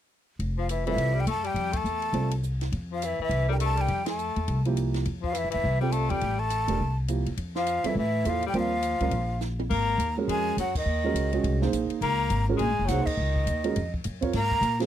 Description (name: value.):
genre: modal jazz.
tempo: 206 BPM.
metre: 4/4.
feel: swing 60% on 8ths.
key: F major, Ab mixolydian from 9.7 s.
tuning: A4 = 439 Hz.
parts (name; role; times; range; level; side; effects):
upright bass; bass; 0.4-14.9 s; E1 to Bb2; -28 LUFS; equal; none.
compact cocktail drum kit; drums; 0.4-14.9 s; crash cymbal, hi-hat, kick drum, ride cymbal, snare drum, toms; -38 LUFS; equal; none.
breathy mellow silver concert flute; melody; 0.6-14.8 s; Eb5 to Bb5; -29 LUFS; right 2 dB; none.
clear tenor saxophone; second line; 0.6-14.8 s; Eb3 to Bb3; -32 LUFS; left 12 dB; none.
dark baby grand piano; accompaniment; 0.9-14.9 s; F3 to Db5; -30 LUFS; right 7 dB; none.
room: small room ambience.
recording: dry, close 1970s-style studio recording.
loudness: -24 LUFS.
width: side -11 dB against mid.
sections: 0.4-9.7 A section; 9.7-14.9 B section.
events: band accent 1.7, 4.0, 10.7, 13.0; drum fill 9.4.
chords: 0.4 Fmaj9; 8.5 Ebadd9; 9.7 Ab13sus4.